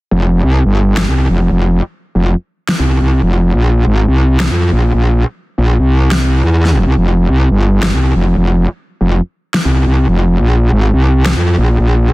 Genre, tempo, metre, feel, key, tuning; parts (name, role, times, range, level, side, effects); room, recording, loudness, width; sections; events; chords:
heavy wobble dubstep; 140 BPM; 4/4; half-time; F harmonic minor; A4 = 440 Hz
metallic wobble bass; bass; 0.1-12.1 s; F1 to F2; -10 LUFS; equal; distortion, chorus, overdrive
electronic snare drum; drums; 1.0-11.3 s; -19 LUFS; equal; overdrive, studio ambience
little or no reverb; dense, heavily limited modern master; -10 LUFS; side -20 dB against mid
0.1-12.1 A section